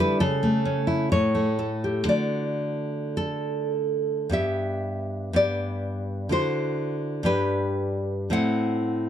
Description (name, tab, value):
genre	romantic piece for solo classical guitar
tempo	48-66 BPM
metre	2/4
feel	rubato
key	D major, G major from 4.3 s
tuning	A4 = 440 Hz
part	nylon-string guitar	solo	0.0-9.1 s	G2 to F#5	-23 LUFS	equal	none
room	light reverb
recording	dark, warm production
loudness	-23 LUFS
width	side -10 dB against mid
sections	0.0-4.3 A section; 4.3-9.1 B section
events	none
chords	0.2 A/C#; 1.1 A7; 2.1 D; 4.3 G; 6.3 D9; 7.3 G; 8.3 Am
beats	| 0.20 1.11 | 2.09 3.16 | 4.33 5.35 | 6.32 7.26 | 8.32